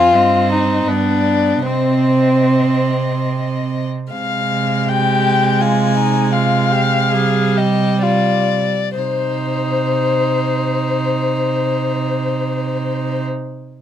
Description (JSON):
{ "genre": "classical, slow romantic movement for string quartet", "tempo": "60-83 BPM", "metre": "3/4", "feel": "rubato", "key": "C minor", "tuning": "A4 = 439 Hz", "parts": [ { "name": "dark violin", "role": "melody", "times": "0.0-13.2 s", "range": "C5 to Ab5", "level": "-21 LUFS", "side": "left 7 dB", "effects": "none" }, { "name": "dark violin", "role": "second line", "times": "0.0-13.2 s", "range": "C4 to C5", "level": "-19 LUFS", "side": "left 3 dB", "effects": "none" }, { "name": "clear viola", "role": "accompaniment", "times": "0.0-13.2 s", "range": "G3 to Eb4", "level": "-20 LUFS", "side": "right 3 dB", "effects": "none" }, { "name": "clear cello", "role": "bass", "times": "0.0-13.2 s", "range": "F2 to C3", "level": "-20 LUFS", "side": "right 5 dB", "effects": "none" } ], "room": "light reverb", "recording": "close, detailed microphones", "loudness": "-14 LUFS", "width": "side -10 dB against mid", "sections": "0.0-4.1 A section; 4.1-9.0 B section; 9.0-13.8 C section", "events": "slowing down 2.9-9.0", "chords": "0.1 Cm/G; 0.9 G; 1.7 Cm; 4.1 Fm/C; 6.3 G5/C; 9.0 Cm" }